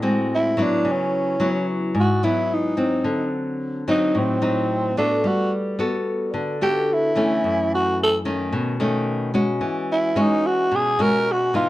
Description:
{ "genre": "bossa nova", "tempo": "110 BPM", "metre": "4/4", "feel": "straight", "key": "unclear", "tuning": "A4 = 440 Hz", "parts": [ { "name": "nylon-string guitar", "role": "accompaniment", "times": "0.0-11.7 s", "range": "F#2 to A4", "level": "-21 LUFS", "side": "left 1 dB", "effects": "none" }, { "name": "growling tenor saxophone", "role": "melody", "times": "0.3-11.7 s", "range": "C4 to A#4", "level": "-21 LUFS", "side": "right 1 dB", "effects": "none" } ], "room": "light reverb", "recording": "close, detailed microphones", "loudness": "-19 LUFS", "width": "side -16 dB against mid", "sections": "0.0-11.7 A section", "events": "tenor saxophone solo 0.0-11.7", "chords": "0.0 D7#11; 0.9 C#m11; 3.1 D7b9; 5.2 Gmaj9; 7.4 F#m7; 8.5 B9; 9.6 E69" }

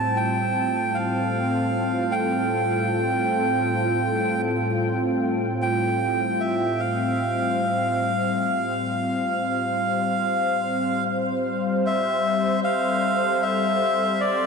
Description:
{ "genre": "ambient", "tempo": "77 BPM", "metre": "4/4", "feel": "swing 60% on 16ths", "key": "unclear", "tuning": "A4 = 437 Hz", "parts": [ { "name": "melodica", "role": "melody", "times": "0.0-14.5 s", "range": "D5 to A5", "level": "-24 LUFS", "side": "right 1 dB", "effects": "dub echo" }, { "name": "warm analog pad", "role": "sustained chords", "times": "0.0-14.5 s", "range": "A2 to C5", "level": "-24 LUFS", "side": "left 1 dB", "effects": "chorus" } ], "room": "wet huge ambient reverb, RT60 7.3 s", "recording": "dreamy mix soaked in reverb", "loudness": "-21 LUFS", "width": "side -5 dB against mid", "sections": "0.0-11.9 A section; 11.9-14.5 B section", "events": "none", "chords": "0.0 Fadd9/A; 11.9 Am7" }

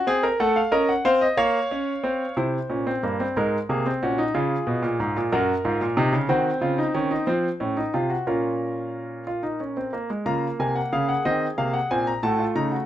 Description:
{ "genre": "classical, baroque-style 4-part fugue for grand piano", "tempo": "61 BPM (dotted quarters)", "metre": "6/8", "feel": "straight", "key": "Bb minor", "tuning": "A4 = 440 Hz", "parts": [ { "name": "clear concert grand piano", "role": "solo", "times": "0.0-12.9 s", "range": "Gb2 to Bb5", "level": "-21 LUFS", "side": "equal", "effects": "none" } ], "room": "light reverb", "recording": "none", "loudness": "-21 LUFS", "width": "side -12 dB against mid", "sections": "0.0-2.4 A section; 2.4-10.3 B section; 10.3-12.9 A section", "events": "none", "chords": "0.4 Adim7; 1.4 Bbm; 2.4 C7; 3.4 Ab9; 4.3 Db7; 5.3 Gb; 6.3 Ebm; 7.3 F; 8.3 Bbm; 11.2 Cm7b5; 12.2 Adim7(no3)" }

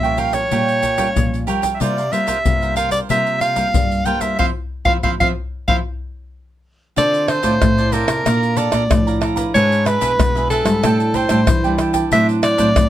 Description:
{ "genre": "samba and choro", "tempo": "93 BPM", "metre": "4/4", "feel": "straight", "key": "D minor from 7.0 s", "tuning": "A4 = 440 Hz", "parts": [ { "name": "clear soprano saxophone", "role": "melody", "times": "0.0-12.9 s", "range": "A4 to G5", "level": "-18 LUFS", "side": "equal", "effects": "none" }, { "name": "cavaquinho", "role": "accompaniment", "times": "0.0-12.7 s", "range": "D4 to Bb5", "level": "-24 LUFS", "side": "right 9 dB", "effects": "none" }, { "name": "nylon-string guitar", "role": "accompaniment", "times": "0.0-12.9 s", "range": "G2 to B4", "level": "-25 LUFS", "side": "left 3 dB", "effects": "none" }, { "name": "nylon-string guitar", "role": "bass", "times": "0.0-12.9 s", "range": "G#2 to G3", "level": "-20 LUFS", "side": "right 1 dB", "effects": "none" }, { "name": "tube shaker, pandeiro, surdo and tamborim", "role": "percussion", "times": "0.0-12.9 s", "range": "none", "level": "-20 LUFS", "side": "left 2 dB", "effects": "none" } ], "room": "light reverb", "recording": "close, detailed microphones", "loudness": "-15 LUFS", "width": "side -12 dB against mid", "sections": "0.0-7.0 A section; 7.0-12.9 B section", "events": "band accent 4.4-7.0", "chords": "0.0 Bbm6; 1.8 C7sus4; 4.4 F5; 7.0 Dm7; 8.3 Bbmaj7; 9.5 E7/G#; 10.8 A7sus4; 12.1 D7/A" }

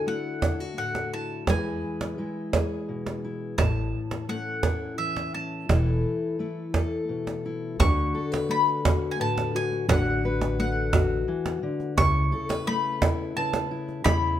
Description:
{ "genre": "acoustic folk duo or small band", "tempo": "86 BPM", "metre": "3/4", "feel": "straight", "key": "unclear", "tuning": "A4 = 440 Hz", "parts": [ { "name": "bowl-back mandolin", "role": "melody", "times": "0.0-14.4 s", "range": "E5 to C#6", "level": "-29 LUFS", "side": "left 1 dB", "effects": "none" }, { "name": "fingerpicked steel-string acoustic guitar", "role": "accompaniment", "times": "0.0-14.4 s", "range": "A2 to B4", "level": "-29 LUFS", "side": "left 3 dB", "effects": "none" }, { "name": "cajon", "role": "percussion", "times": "0.4-14.2 s", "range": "none", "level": "-25 LUFS", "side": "right 2 dB", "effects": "none" }, { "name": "upright bass", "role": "bass", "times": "1.5-14.4 s", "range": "E1 to E2", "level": "-27 LUFS", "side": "equal", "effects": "none" } ], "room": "little or no reverb", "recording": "close, detailed microphones", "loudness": "-24 LUFS", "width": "side -11 dB against mid", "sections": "0.0-7.8 A section; 7.8-14.4 B section", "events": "none", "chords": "0.0 Dadd9; 1.5 E; 3.6 A; 5.7 Esus4; 7.8 D6; 12.0 Aadd9/C#" }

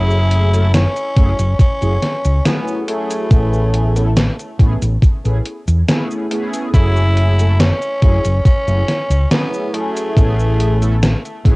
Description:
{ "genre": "vaporwave", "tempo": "70 BPM", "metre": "4/4", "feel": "straight", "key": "unclear", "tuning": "A4 = 440 Hz", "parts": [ { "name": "growling tenor saxophone", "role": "melody", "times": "0.0-11.5 s", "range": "A3 to E4", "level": "-22 LUFS", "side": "equal", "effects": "tape echo" }, { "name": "mellow synth brass", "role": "accompaniment", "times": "0.0-11.6 s", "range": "F#3 to A4", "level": "-23 LUFS", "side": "equal", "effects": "phaser, analog chorus, tape echo" }, { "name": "fingered electric bass", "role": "bass", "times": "0.0-11.6 s", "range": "F#1 to E2", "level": "-14 LUFS", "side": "equal", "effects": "tube saturation" }, { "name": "gated 80s digital drum machine", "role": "drums", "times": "0.1-11.6 s", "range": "cabasa, hi-hat, snare drum", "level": "-18 LUFS", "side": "equal", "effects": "gated reverb, gated reverb snare, overdrive, small room ambience, cassette tape" }, { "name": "electronic kick drum", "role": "drums", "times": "1.2-11.6 s", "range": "none", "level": "-11 LUFS", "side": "equal", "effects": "overdrive, small room ambience, cassette tape" } ], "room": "light reverb", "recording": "home recording on cassette", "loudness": "-13 LUFS", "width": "side -24 dB against mid", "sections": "0.0-11.6 A section", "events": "none", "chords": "0.0 F#m9; 3.3 Amaj7; 6.7 F#m9; 10.2 Amaj7" }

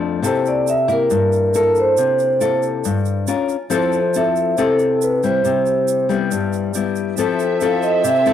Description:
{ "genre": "bossa nova", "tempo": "138 BPM", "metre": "4/4", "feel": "straight", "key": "C major", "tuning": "A4 = 442 Hz", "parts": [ { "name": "nylon-string guitar", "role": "accompaniment", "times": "0.0-8.3 s", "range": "F2 to Bb4", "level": "-19 LUFS", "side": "left 5 dB", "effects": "cassette tape" }, { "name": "egg shaker", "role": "percussion", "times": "0.2-8.3 s", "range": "none", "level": "-32 LUFS", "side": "right 17 dB", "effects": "none" }, { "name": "vibraphone with medium mallets", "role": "melody", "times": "0.3-8.3 s", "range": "A4 to F5", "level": "-17 LUFS", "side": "right 2 dB", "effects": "cassette tape" }, { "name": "warm symphonic violin section", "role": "sustained chords", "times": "7.2-8.3 s", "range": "C4 to E5", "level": "-25 LUFS", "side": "right 3 dB", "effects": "cassette tape" } ], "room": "moderate spring reverb, RT60 2.0 s, small room ambience", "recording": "home recording on cassette", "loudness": "-15 LUFS", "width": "side -10 dB against mid", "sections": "0.0-7.2 A section; 7.2-8.3 B section", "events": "vibraphone solo 7.2-8.3", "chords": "0.2 C6; 3.3 Db6; 3.7 Fmaj7; 5.4 Cmaj7; 7.2 Fmaj7" }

